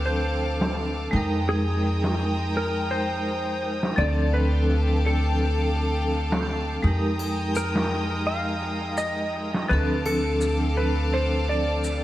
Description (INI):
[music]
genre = trip hop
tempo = 84 BPM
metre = 4/4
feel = straight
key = unclear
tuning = A4 = 441 Hz
[part]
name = clean lap steel guitar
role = melody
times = 0.0-12.0 s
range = Ab4 to F5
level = -29 LUFS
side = equal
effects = lush chorus, dub echo
[part]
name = vibraphone with hard mallets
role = accompaniment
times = 0.0-12.0 s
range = F3 to G5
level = -28 LUFS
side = equal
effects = tremolo, low-pass filter
[part]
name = clear studio violin section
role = sustained chords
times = 0.0-12.0 s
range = Ab3 to Eb6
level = -32 LUFS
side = equal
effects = none
[part]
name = upright bass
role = bass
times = 0.0-12.0 s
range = D2 to F2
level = -26 LUFS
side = equal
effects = none
[part]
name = backwards swelling texture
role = texture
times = 0.0-12.0 s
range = G5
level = -39 LUFS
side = left 3 dB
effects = built-in reverb, lush chorus
[part]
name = trip hop sampler-style drum kit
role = drums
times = 0.1-12.0 s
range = hi-hat, snare drum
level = -32 LUFS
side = equal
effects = low-pass filter on hats, low-pass filter on snare, low-pass filter on room, gated reverb
[part]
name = triangle and maracas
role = percussion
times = 7.2-12.0 s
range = none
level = -40 LUFS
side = left 4 dB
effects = none
[sound]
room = moderate plate reverb, RT60 2.1 s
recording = bright 1980s-style digital production, vinyl crackle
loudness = -22 LUFS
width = side -14 dB against mid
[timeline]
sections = 0.0-12.0 A section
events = filter sweep on vibraphone 0.0-12.0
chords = 0.0 Dm7; 1.1 Fm11; 4.0 Dm7; 6.8 Fm11; 9.7 Dm7